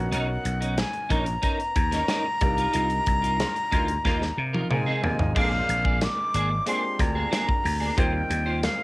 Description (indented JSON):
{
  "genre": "polished 1980s jazz-funk pop",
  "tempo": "92 BPM",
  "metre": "4/4",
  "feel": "straight",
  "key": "unclear",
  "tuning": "A4 = 442 Hz",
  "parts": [
    { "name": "breathy bright concert flute", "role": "melody", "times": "0.0-8.8 s", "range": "F5 to D6", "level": "-27 LUFS", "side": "left 1 dB", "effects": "cassette tape" },
    { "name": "clear baby grand piano", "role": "accompaniment", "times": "0.0-8.8 s", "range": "G3 to A#4", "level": "-34 LUFS", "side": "equal", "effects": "lush chorus" },
    { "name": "vintage slap bass", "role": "bass", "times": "0.0-8.7 s", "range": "Ab1 to C3", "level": "-27 LUFS", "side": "equal", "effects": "none" },
    { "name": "clean electric guitar", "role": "riff", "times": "0.1-8.8 s", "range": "Bb3 to C5", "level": "-30 LUFS", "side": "right 1 dB", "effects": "ensemble chorus" },
    { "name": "modern studio drum kit", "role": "drums", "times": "0.1-8.8 s", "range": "crash cymbal, hi-hat, kick drum, snare drum, toms", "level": "-27 LUFS", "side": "equal", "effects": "cassette tape" },
    { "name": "warm horn section", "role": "second line", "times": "3.4-3.9 s", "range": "G3 to Bb4", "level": "-37 LUFS", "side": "left 2 dB", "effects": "none" }
  ],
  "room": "light reverb",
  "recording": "home recording on cassette",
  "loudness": "-22 LUFS",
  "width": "side -21 dB against mid",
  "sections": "0.0-5.4 A section; 5.4-8.8 B section",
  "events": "band accent 2.7-5.4; drum fill 4.1-5.4",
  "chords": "0.0 Bmaj9; 2.4 Cm11; 4.7 Bb9sus4; 5.4 Bb7; 8.0 Eb69"
}